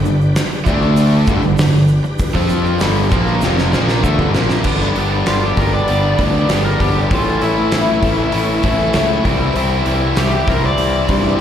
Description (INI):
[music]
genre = classic rock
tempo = 98 BPM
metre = 4/4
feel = straight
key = G major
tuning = A4 = 440 Hz
[part]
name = bright tonewheel organ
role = sustained chords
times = 0.0-11.4 s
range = C4 to E5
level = -31 LUFS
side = left 1 dB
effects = none
[part]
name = cranked stack guitar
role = riff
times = 0.0-11.4 s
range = F2 to G4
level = -19 LUFS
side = right 7 dB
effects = overdrive, slapback echo
[part]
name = distorted electric guitar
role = riff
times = 0.0-11.4 s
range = F2 to F4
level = -20 LUFS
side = left 10 dB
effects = overdrive, slapback echo
[part]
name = growling fingered electric bass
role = bass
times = 0.0-11.3 s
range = F1 to G2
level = -18 LUFS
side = equal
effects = overdrive
[part]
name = tube shaker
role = percussion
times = 0.1-4.6 s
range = none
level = -40 LUFS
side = right 3 dB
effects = none
[part]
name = gated 80s drum kit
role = drums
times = 0.4-11.2 s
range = crash cymbal, hi-hat, kick drum, snare drum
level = -19 LUFS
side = equal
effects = none
[part]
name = picked old ladder-braced acoustic guitar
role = accompaniment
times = 4.6-11.4 s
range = A2 to C5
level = -24 LUFS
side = left 2 dB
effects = slapback echo
[part]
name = overdriven slide guitar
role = melody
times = 5.3-11.4 s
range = E4 to D5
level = -21 LUFS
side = left 1 dB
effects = none
[sound]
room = small room ambience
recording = live gig heard through the venue's PA, recital hall reverb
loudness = -13 LUFS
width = side -9 dB against mid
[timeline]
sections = 0.0-4.7 A section; 4.7-11.4 B section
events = drum fill 3.4-4.7; electric slide guitar solo 4.7-11.4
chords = 0.0 G; 0.7 D5; 1.3 G; 7.1 A; 9.3 C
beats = 0.37 0.98 1.59 | 2.21 2.82 3.43 4.04 | 4.66 5.27 5.88 6.50 | 7.11 7.72 8.34 8.95 | 9.57 10.18 10.79 11.41